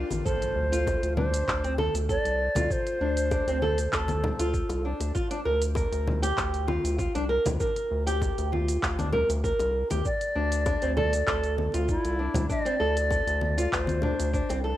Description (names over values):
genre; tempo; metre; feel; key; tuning
organic downtempo; 98 BPM; 4/4; straight; D minor; A4 = 439 Hz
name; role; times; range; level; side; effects
flamenco guitar; arpeggios; 0.0-14.8 s; C4 to Bb4; -29 LUFS; equal; cassette tape, analog delay
round analog bass; bass; 0.0-14.7 s; A1 to D2; -29 LUFS; equal; none
swell and impact; sound effects; 0.0-2.7 s; none; -38 LUFS; equal; none
organic electronic drum kit; drums; 0.1-14.6 s; cabasa, handclaps, hi-hat; -34 LUFS; right 1 dB; studio reverb, cassette tape
bongos and congas; percussion; 0.1-14.6 s; none; -33 LUFS; left 2 dB; none
mellow low Native American-style wooden flute; melody; 0.3-4.9, 10.1-14.6 s; E4 to D5; -30 LUFS; equal; cassette tape, tape echo
electronic kick drum; drums; 0.3-14.5 s; none; -32 LUFS; equal; studio reverb, cassette tape
room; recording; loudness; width
light reverb; home recording on cassette; -24 LUFS; side -13 dB against mid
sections
0.3-14.8 A section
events
break 0.0; swell 0.0; impact 0.3-2.7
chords
0.3 Dm7; 5.2 Gm7; 10.1 Dm7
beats
| 0.26 0.87 1.48 2.09 | 2.70 3.32 3.93 4.54 | 5.15 5.76 6.38 6.99 | 7.60 8.21 8.83 9.44 | 10.05 10.66 11.28 11.89 | 12.50 13.11 13.72 14.34